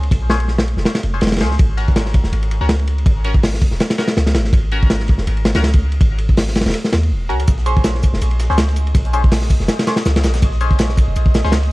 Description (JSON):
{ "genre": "drum and bass, jungle", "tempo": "163 BPM", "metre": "4/4", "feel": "swing 55% on 16ths", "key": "Bb minor", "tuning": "A4 = 445 Hz", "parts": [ { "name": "warm 808-style bass", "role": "bass", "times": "0.0-11.7 s", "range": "Eb1 to Eb2", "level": "-17 LUFS", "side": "equal", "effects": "none" }, { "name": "crunchy breakbeat drum kit", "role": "drums", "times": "0.0-11.7 s", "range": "hi-hat, kick drum, ride cymbal, snare drum", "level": "-16 LUFS", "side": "equal", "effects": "none" }, { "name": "band-passed chord stab", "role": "stabs", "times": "0.3-11.5 s", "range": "Db4 to C5", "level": "-25 LUFS", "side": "left 2 dB", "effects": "phaser, dub echo" }, { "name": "breakbeat sampler-style drum kit", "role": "drums", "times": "7.5-11.7 s", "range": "hi-hat, snare drum, tambourine", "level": "-33 LUFS", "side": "left 1 dB", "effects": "overdrive, high-pass filter on perc, high-pass filter on snare, high-pass filter on hats, high-pass filter on room" }, { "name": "wind-like tuned noise texture", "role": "texture", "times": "8.3-11.7 s", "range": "Eb5 to Eb6", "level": "-32 LUFS", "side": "right 4 dB", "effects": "built-in reverb" } ], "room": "studio ambience", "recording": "dark, warm production, vinyl crackle", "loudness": "-13 LUFS", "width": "side -20 dB against mid", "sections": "0.0-11.7 A section", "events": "none", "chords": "0.0 Bbm9; 1.6 Ab7sus4; 7.5 Bbm9" }